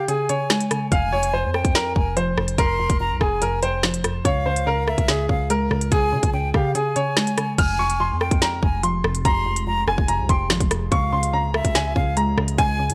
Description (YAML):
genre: hip hop, drill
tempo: 144 BPM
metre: 4/4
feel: half-time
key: F minor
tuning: A4 = 442 Hz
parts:
  - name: bright upright piano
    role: melody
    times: 0.0-12.9 s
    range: G4 to F6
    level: -27 LUFS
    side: equal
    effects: none
  - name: breathy concert flute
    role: second line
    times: 0.0-12.9 s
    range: E5 to C6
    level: -29 LUFS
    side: equal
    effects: analog delay
  - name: mallet-like synth pluck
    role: accompaniment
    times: 0.0-12.9 s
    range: F2 to Ab3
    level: -29 LUFS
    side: equal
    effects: chorus
  - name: drill drum kit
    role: drums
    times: 0.1-12.9 s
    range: crash cymbal, hi-hat, kick drum, rim click, snare drum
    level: -24 LUFS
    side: equal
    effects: none
  - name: distorted 808-style bass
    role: bass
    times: 0.9-12.9 s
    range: F1 to Db3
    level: -30 LUFS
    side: equal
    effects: distortion
  - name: deep dark ambient pad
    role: sustained chords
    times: 8.5-12.9 s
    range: C3 to Ab4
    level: -36 LUFS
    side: equal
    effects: chorus, built-in reverb
room: digital ambience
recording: dry, gritty hardware recording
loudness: -21 LUFS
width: mono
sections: 0.0-7.6 A section; 7.6-12.9 B section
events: break 0.0-0.9; kick muted 0.1-0.9, 6.8-7.6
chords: 0.0 Db5; 0.9 Fm; 4.3 Db; 7.6 Fm; 10.9 Db